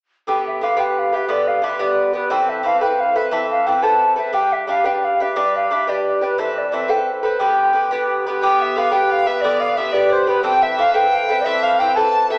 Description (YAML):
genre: celtic folk, Celtic jig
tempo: 118 BPM (dotted quarters)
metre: 6/8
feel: straight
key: G mixolydian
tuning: A4 = 440 Hz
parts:
  - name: mellow wooden flute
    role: melody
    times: 0.3-12.4 s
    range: B4 to A5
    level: -17 LUFS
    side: equal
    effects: none
  - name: Irish bouzouki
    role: accompaniment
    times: 0.3-12.4 s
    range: D3 to B4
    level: -20 LUFS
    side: equal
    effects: none
  - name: clear fiddle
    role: second line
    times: 8.4-12.4 s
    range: B4 to A5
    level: -23 LUFS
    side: equal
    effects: none
room: wet recital hall reverb, RT60 1.4 s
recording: recorded in a church or concert hall, small speaker sound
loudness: -15 LUFS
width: side -27 dB against mid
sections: 0.3-8.4 A section; 8.4-12.4 A section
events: none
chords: 0.3 G; 2.3 Amadd9; 4.3 G; 6.4 Amadd9; 7.4 G; 10.4 Amadd9